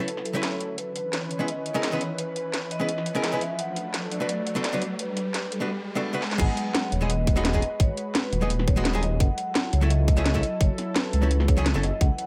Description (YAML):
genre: liquid drum and bass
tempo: 171 BPM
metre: 4/4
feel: straight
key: G# phrygian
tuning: A4 = 442 Hz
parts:
  - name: vibraphone with medium mallets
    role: melody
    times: 0.0-12.3 s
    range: A4 to G#5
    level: -35 LUFS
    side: equal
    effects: dub echo
  - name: archtop guitar, miked and amplified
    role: accompaniment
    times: 0.0-11.8 s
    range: F#3 to B4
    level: -32 LUFS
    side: equal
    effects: none
  - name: lush unison pad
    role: sustained chords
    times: 0.0-12.3 s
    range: E3 to B4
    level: -38 LUFS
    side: equal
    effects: chorus, sidechain pumping
  - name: riser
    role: sound effects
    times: 0.2-6.4 s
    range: none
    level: -37 LUFS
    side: equal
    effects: none
  - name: drum and bass drum kit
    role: drums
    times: 0.1-12.3 s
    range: crash cymbal, hi-hat, snare drum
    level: -32 LUFS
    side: equal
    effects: high-pass filter on hats, high-pass filter on snare, high-pass filter on cymbals, high-pass filter on room
  - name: swelling detuned saw bass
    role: bass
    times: 6.4-12.1 s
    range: D#1 to C#2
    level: -26 LUFS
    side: equal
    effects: none
  - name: electronic kick drum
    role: drums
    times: 6.4-12.1 s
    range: none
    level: -25 LUFS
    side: equal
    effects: none
room: light reverb, digital ambience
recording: none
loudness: -25 LUFS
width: mono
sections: 0.0-6.4 A section; 6.4-12.3 B section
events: build-up 0.0-6.4; riser 0.4-6.4; drum fill 6.2; drop 6.4-12.3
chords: 0.0 F#m7; 0.8 C#m7; 3.6 Bm7; 6.4 G#m7; 9.2 F#m7